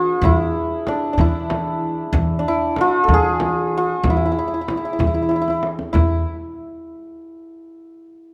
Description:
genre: Persian modal ensemble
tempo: 63 BPM (dotted quarters)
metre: 6/8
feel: straight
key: E dastgah homayun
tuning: A4 = 440 Hz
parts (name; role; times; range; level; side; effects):
- santur; melody; 0.0-6.2 s; D4 to B4; -22 LUFS; equal; none
- upright bass; bass; 0.0-6.2 s; E2 to E3; -26 LUFS; equal; none
- frame drum; percussion; 0.2-6.2 s; none; -27 LUFS; equal; none
- tombak; percussion; 0.2-6.2 s; none; -26 LUFS; equal; none
room: light reverb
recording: none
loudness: -19 LUFS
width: mono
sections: 0.0-5.9 A section; 5.9-7.9 B section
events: drum fill 5.3-5.9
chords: none

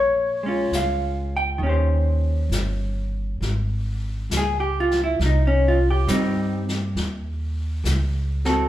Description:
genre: jazz ballad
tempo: 68 BPM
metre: 4/4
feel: swing 68% on 8ths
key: Ab major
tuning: A4 = 440 Hz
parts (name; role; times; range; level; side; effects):
- vintage hollow-body jazz guitar; accompaniment; 0.0-8.7 s; Eb3 to G5; -22 LUFS; equal; none
- upright bass; bass; 0.0-8.7 s; G1 to G2; -23 LUFS; equal; none
- jazz brush drum kit; drums; 0.7-8.7 s; brushed snare drum, hi-hat, snare drum; -31 LUFS; left 2 dB; none
room: moderate large studio reverb, RT60 1.2 s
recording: band playing live in one room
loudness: -20 LUFS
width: side -13 dB against mid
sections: 0.0-3.4 A section; 3.4-8.7 B section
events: none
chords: 0.0 Bbm7; 1.6 Eb6; 3.4 Abmaj7; 7.0 Ebm7

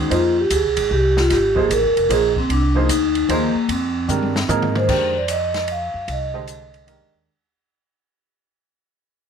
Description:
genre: modal jazz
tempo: 151 BPM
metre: 3/4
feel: swing 65% on 8ths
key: unclear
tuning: A4 = 439 Hz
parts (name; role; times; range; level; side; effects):
- vibraphone with medium mallets; melody; 0.0-7.1 s; Bb3 to F5; -19 LUFS; equal; none
- warm concert grand piano; accompaniment; 0.0-7.3 s; D3 to Eb5; -23 LUFS; right 4 dB; none
- upright bass; bass; 0.0-7.3 s; F1 to Ab2; -23 LUFS; equal; none
- open jazz drum kit; drums; 0.1-7.0 s; crash cymbal, hi-hat, kick drum, ride cymbal, snare drum, toms; -26 LUFS; left 1 dB; none
room: light reverb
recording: none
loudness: -16 LUFS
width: side -7 dB against mid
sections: 0.0-4.9 A section; 4.9-7.3 B section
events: drum fill 4.1-4.9; fade-out 4.9-7.3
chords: 0.1 Fm11

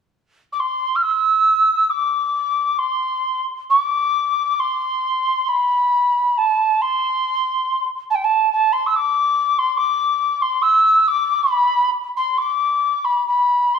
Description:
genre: celtic folk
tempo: 69 BPM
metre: 3/4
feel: uneven beats, rubato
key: C major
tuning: A4 = 435 Hz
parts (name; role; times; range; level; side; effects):
- mellow hollow wooden whistle; solo; 0.5-13.8 s; G5 to F6; -16 LUFS; equal; none
room: moderate recital hall reverb, RT60 1.5 s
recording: none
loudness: -16 LUFS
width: side -7 dB against mid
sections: 0.0-1.1 A section; 1.1-3.7 B section; 3.7-13.8 C section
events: none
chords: none

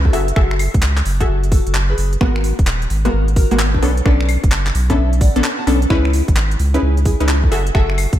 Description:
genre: UK garage, two-step garage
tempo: 130 BPM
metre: 4/4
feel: swing 65% on 16ths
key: unclear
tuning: A4 = 440 Hz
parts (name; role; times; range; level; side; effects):
- nylon-string guitar; melody; 0.0-8.0 s; D4 to A5; -26 LUFS; left 3 dB; lush chorus, ping-pong delay
- saturated sub bass; bass; 0.0-8.2 s; D#1 to C#2; -17 LUFS; equal; none
- punchy chord stab; stabs; 0.1-8.2 s; G#3 to E5; -21 LUFS; equal; chorus, cassette tape
- electronic kick drum; drums; 0.1-8.2 s; none; -16 LUFS; equal; none
- garage drum kit; drums; 0.1-8.2 s; claves, finger snaps, handclaps, hi-hat; -24 LUFS; equal; none
room: light reverb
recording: none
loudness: -13 LUFS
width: side -12 dB against mid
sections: 0.0-8.2 A section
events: none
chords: 0.1 F#m9; 2.2 G#m9; 3.8 Bm9; 5.9 C#m9; 7.5 F#m9

